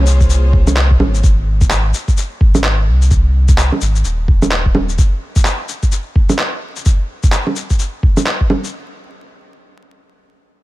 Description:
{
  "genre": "future garage",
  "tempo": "128 BPM",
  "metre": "4/4",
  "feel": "swing 60% on 16ths",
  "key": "unclear",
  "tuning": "A4 = 439 Hz",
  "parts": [
    { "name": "rich studio string section", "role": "sustained chords", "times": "0.0-1.2 s", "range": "Bb3 to Db5", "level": "-27 LUFS", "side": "left 1 dB", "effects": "sidechain pumping" },
    { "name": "warm sub bass", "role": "bass", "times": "0.0-5.0 s", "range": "Eb1 to C2", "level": "-13 LUFS", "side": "equal", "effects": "sidechain pumping" },
    { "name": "electronic shaker, bongos and handclaps", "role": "drums", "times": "0.1-8.7 s", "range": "none", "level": "-18 LUFS", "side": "right 1 dB", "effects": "none" },
    { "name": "electronic kick drum", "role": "drums", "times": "0.2-8.5 s", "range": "none", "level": "-12 LUFS", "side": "equal", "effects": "none" }
  ],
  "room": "digital ambience",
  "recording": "vinyl crackle",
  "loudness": "-12 LUFS",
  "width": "side -18 dB against mid",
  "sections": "0.0-8.7 A section",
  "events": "none",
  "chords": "0.0 Bbm7; 1.2 Ebsus4",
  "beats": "0.30 0.77 | 1.23 1.70 2.17 2.64 | 3.11 3.58 4.05 4.51 | 4.98 5.45 5.92 6.39 | 6.86 7.33 7.80 8.27"
}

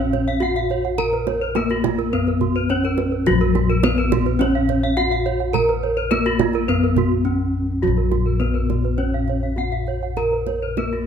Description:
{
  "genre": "Balinese gamelan",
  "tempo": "105 BPM",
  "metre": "4/4",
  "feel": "straight",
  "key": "Bb pelog",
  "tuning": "A4 = 439 Hz",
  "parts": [
    { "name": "gamelan-type bronze metallophone", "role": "melody", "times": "0.0-11.1 s", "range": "Gb3-20c to Bb4", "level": "-22 LUFS", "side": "left 2 dB", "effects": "none" },
    { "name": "gamelan-type bronze metallophone", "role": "arpeggios", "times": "0.0-10.6 s", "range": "F4-30c to Gb5-20c", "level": "-27 LUFS", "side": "right 11 dB", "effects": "none" },
    { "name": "gamelan-type bossed gongs", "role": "bass", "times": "0.0-11.1 s", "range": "Bb1 to Bb4", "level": "-22 LUFS", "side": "left 1 dB", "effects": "none" },
    { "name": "kendang", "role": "percussion", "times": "0.1-11.0 s", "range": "none", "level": "-27 LUFS", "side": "right 9 dB", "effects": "none" },
    { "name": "gamelan-type bronze metallophone", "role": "arpeggios", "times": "0.3-11.1 s", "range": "Gb4-20c to Bb5", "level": "-26 LUFS", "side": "left 2 dB", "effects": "none" }
  ],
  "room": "light reverb",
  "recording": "close, detailed microphones",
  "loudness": "-18 LUFS",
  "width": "side -8 dB against mid",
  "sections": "0.0-3.3 A section; 3.3-11.1 A section",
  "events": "none",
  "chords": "none",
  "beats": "0.42 | 0.99 1.56 2.13 2.70 | 3.27 3.84 4.41 4.98 | 5.55 6.12 6.69 7.26 | 7.83 8.40 8.98 9.57 | 10.17 10.78"
}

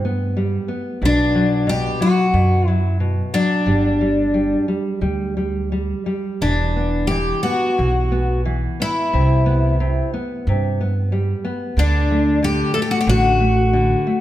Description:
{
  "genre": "fado-style ballad",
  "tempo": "90 BPM",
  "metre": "4/4",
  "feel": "rubato",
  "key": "G major",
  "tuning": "A4 = 440 Hz",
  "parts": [
    { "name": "nylon-string guitar", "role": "accompaniment", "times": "0.0-14.2 s", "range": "B2 to B3", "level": "-22 LUFS", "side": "left 1 dB", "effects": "none" },
    { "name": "upright bass", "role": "bass", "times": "0.0-13.9 s", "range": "E1 to G2", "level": "-19 LUFS", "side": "right 1 dB", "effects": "none" },
    { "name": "picked twelve-string acoustic guitar", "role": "melody", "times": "1.1-14.2 s", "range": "D4 to A4", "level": "-19 LUFS", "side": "left 1 dB", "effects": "none" }
  ],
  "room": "moderate recital hall reverb, RT60 1.7 s",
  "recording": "none",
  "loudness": "-16 LUFS",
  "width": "side -13 dB against mid",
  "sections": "0.0-14.2 A section",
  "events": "none",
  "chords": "0.0 Cmaj7(no3) (rootless); 1.0 Bm; 3.7 G5; 6.4 E5; 9.1 Cmaj7; 11.8 D",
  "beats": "0.37 | 1.02 1.68 2.34 3.00 | 3.67 4.34 5.02 5.71 | 6.41 7.10 7.78 8.45 | 9.12 9.79 10.46 11.12 | 11.77 12.42 13.07 13.73"
}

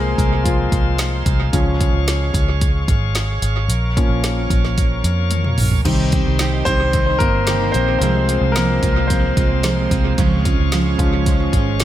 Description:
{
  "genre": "piano-driven pop",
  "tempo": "111 BPM",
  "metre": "4/4",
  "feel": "straight",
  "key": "F minor",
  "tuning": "A4 = 441 Hz",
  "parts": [
    { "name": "warm concert grand piano", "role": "accompaniment", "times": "0.0-11.8 s", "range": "Eb3 to C5", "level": "-21 LUFS", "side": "left 2 dB", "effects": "analog delay" },
    { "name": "bright tonewheel organ", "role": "sustained chords", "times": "0.0-11.8 s", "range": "G4 to Db6", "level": "-28 LUFS", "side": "equal", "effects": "overdrive, slow rotary speaker" },
    { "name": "vintage muted fingered electric bass", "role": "bass", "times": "0.0-11.8 s", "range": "G1 to F2", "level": "-19 LUFS", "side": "equal", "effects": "none" },
    { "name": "deep house drum kit", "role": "drums", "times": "0.2-11.8 s", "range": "crash cymbal, hi-hat, kick drum, snare drum, toms", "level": "-20 LUFS", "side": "equal", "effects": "analog delay" },
    { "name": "picked steel-string acoustic guitar", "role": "riff", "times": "5.9-11.8 s", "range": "C3 to G4", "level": "-22 LUFS", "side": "right 5 dB", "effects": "analog delay" }
  ],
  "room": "light reverb",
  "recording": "echo-heavy mix",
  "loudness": "-15 LUFS",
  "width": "side -12 dB against mid",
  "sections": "0.0-11.8 A section",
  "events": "grand piano solo 0.0-11.8; drum fill 5.3-5.9",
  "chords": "0.0 Fm/C; 1.5 Db; 3.7 Bbm; 5.9 Cm; 8.0 Fm/C; 10.2 Db",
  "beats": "0.46 1.00 | 1.54 2.08 2.62 3.16 | 3.70 4.24 4.78 5.32 | 5.86 6.40 6.94 7.48 | 8.02 8.56 9.10 9.64 | 10.18 10.72 11.26 11.80"
}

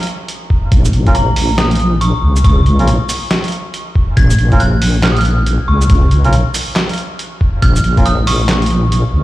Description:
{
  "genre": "deep dubstep",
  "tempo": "139 BPM",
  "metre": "4/4",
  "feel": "swing 62% on 16ths, half-time",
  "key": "Bb minor",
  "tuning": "A4 = 435 Hz",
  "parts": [
    { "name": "trip hop sampler-style drum kit", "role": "drums", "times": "0.0-9.0 s", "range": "handclaps, hi-hat, shaker, snare drum", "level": "-20 LUFS", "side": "equal", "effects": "none" },
    { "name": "electronic kick drum", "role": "drums", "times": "0.5-8.0 s", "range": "none", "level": "-12 LUFS", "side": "equal", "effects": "none" },
    { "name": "wobble bass", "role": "bass", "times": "0.7-9.2 s", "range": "Bb1 to Db2", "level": "-12 LUFS", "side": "equal", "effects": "chorus, tube saturation" },
    { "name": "dark detuned synth bell", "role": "melody", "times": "1.1-9.2 s", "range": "Bb5 to Ab6", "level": "-21 LUFS", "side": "equal", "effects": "chorus, phaser, dub echo" },
    { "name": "melodica", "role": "stabs", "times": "1.1-8.1 s", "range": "Db4 to Bb4", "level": "-25 LUFS", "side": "right 1 dB", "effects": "dub echo" }
  ],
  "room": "little or no reverb",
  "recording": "played on a big sound system in a bare room, large studio reverb",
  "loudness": "-10 LUFS",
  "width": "side -16 dB against mid",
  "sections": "0.0-9.2 A section",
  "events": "none",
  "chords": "0.0 Bbm",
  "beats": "0.28 | 0.72 1.15 1.58 2.01 | 2.44 2.88 3.31 3.74 | 4.17 4.60 5.03 5.46 | 5.90 6.33 6.76 7.19 | 7.62 8.05 8.49 8.92"
}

